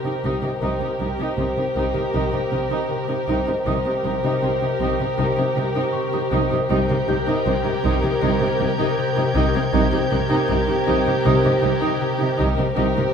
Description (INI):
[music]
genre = cinematic, suspense film score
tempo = 79 BPM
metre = 4/4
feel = straight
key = C phrygian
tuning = A4 = 440 Hz
[part]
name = muted studio violin section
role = melody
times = 0.0-13.1 s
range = Bb4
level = -28 LUFS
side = equal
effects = none
[part]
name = muted studio violin section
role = second line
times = 0.0-13.1 s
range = G4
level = -27 LUFS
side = right 2 dB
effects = none
[part]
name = muted symphonic viola section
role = accompaniment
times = 0.0-13.0 s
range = Eb4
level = -27 LUFS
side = right 2 dB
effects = none
[part]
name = concert harp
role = riff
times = 0.0-13.1 s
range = C3 to C4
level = -24 LUFS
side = left 4 dB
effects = none
[part]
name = celesta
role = texture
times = 0.0-13.1 s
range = G4 to G6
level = -35 LUFS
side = left 5 dB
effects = none
[part]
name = muted studio cello section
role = bass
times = 0.1-13.0 s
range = C3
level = -26 LUFS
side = right 2 dB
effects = none
[part]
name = muted studio double bass section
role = bass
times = 0.2-12.8 s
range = C2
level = -26 LUFS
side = right 2 dB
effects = none
[part]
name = muted studio violin section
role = texture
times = 6.7-12.4 s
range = G6 to Ab6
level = -34 LUFS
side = left 3 dB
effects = none
[sound]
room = moderate scoring stage reverb, RT60 1.7 s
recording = minimal, uncompressed stereo recording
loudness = -18 LUFS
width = side -7 dB against mid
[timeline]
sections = 0.0-13.1 A section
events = none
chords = 0.0 Cm7